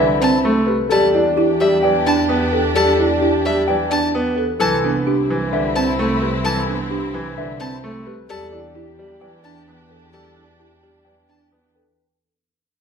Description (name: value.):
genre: classical, minimalist pattern music.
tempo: 130 BPM.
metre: 4/4.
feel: straight.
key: unclear.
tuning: A4 = 440 Hz.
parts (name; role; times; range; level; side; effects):
mellow electric guitar; melody; 0.0-12.1 s; G4 to G5; -24 LUFS; left 7 dB; none.
clear baby grand piano; accompaniment; 0.0-11.8 s; D3 to D4; -20 LUFS; equal; none.
rich studio string section; sustained chords; 0.0-11.7 s; C4 to G4; -26 LUFS; equal; none.
folk marimba with soft mallets; arpeggios; 0.0-12.1 s; C4 to D5; -22 LUFS; right 7 dB; none.
warm studio double bass section; bass; 0.0-11.9 s; C2 to E2; -27 LUFS; right 2 dB; none.
rich violin; arpeggios; 0.2-11.5 s; E5 to A5; -25 LUFS; left 3 dB; none.
room: wet recital hall reverb, RT60 1.6 s.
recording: minimal, uncompressed stereo recording.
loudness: -15 LUFS.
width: side -6 dB against mid.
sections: 0.0-12.0 A section.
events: fade-out 0.0-12.0.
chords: 0.0 Cmaj9; 0.9 Em7; 4.6 Cmaj9; 8.3 Em7.